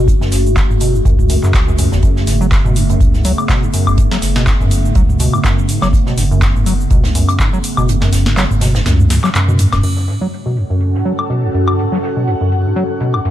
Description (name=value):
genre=acid house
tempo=123 BPM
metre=4/4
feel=swing 55% on 16ths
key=F# minor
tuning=A4 = 444 Hz
part: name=warbly tape-like pad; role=sustained chords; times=0.0-13.3 s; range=C#3 to F#4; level=-21 LUFS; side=right 2 dB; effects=chorus, built-in reverb, sidechain pumping
part: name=acid bass, square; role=riff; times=0.0-13.3 s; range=E2 to F#3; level=-16 LUFS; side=equal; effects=tube saturation, analog chorus, sidechain pumping, digital delay
part: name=saturated sub bass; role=bass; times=0.0-9.8 s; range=E1 to F#2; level=-17 LUFS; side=equal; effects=sidechain pumping
part: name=booming analog drum machine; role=drums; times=0.1-13.2 s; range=crash cymbal, handclaps, hi-hat, shaker, snare drum, toms, woodblock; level=-19 LUFS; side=left 1 dB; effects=none
part: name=electronic kick drum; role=drums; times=0.1-7.5 s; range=none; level=-14 LUFS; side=equal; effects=none
part: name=warm soul drum kit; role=drums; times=0.1-13.3 s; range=hi-hat, snare drum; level=-29 LUFS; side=right 2 dB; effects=high-pass filter on hats, low-pass filter on hats, high-pass filter on snare, low-pass filter on snare, high-pass filter on room, low-pass filter on room
part: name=airy breathy pad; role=texture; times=10.2-13.3 s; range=C#4 to F#5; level=-20 LUFS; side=equal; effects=chorus, phaser, sidechain pumping
room=digital ambience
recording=lossy compression artefacts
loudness=-11 LUFS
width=side -12 dB against mid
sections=0.0-9.8 A section; 9.8-13.3 B section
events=kick drops out 7.9-9.8; drum fill 9.1-9.8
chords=0.0 F#m